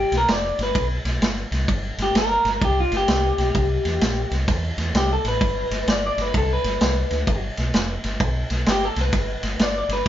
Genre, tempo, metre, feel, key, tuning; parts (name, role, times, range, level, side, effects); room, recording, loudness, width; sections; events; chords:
electric blues shuffle; 129 BPM; 4/4; swing 64% on 8ths; G mixolydian; A4 = 440 Hz
electric guitar through a small old amp; melody; 0.0-10.1 s; F4 to D5; -22 LUFS; left 1 dB
deep dub fingered electric bass; bass; 0.0-10.1 s; F1 to E2; -25 LUFS; equal
vintage drum kit; drums; 0.1-10.1 s; kick drum, ride cymbal, snare drum; -23 LUFS; right 1 dB
light reverb; band playing live in one room, nothing above 7.5 kHz; -19 LUFS; side -11 dB against mid
0.0-10.1 A section
0.0 G; 3.5 C7; 5.4 G